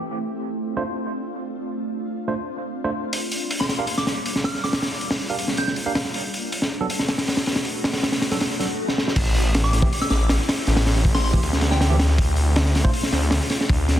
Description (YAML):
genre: drum and bass, jungle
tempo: 159 BPM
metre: 4/4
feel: straight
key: unclear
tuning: A4 = 440 Hz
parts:
  - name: granular cloud pad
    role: sustained chords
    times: 0.0-14.0 s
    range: G3 to G4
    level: -30 LUFS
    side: equal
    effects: built-in reverb
  - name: tine electric piano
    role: stabs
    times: 0.8-12.9 s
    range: E3 to F5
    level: -30 LUFS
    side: right 3 dB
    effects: low-pass filter, dub echo
  - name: crunchy breakbeat drum kit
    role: drums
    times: 3.1-14.0 s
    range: crash cymbal, hi-hat, kick drum, snare drum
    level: -22 LUFS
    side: equal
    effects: none
  - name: soft synth bell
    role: melody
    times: 3.6-5.7, 9.6-12.2 s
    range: G5 to G6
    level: -30 LUFS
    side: equal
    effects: chorus, phaser, dub echo
  - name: swell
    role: sound effects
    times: 8.6-9.2 s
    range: none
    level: -34 LUFS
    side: left 3 dB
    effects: none
  - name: detuned saw bass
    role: bass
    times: 9.2-14.0 s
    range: A1 to D2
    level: -20 LUFS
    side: equal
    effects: none
room: light reverb, small room ambience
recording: dense, heavily limited modern master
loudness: -20 LUFS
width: side -12 dB against mid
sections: 0.0-9.2 A section; 9.2-14.0 B section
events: filter sweep on ambient pad 0.0-9.2; swell 8.6-9.2; drum fill 8.9; drop 9.2-14.0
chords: 0.1 Dm7; 3.1 Gm7; 6.1 Bm7; 9.2 Am7; 12.2 Dm7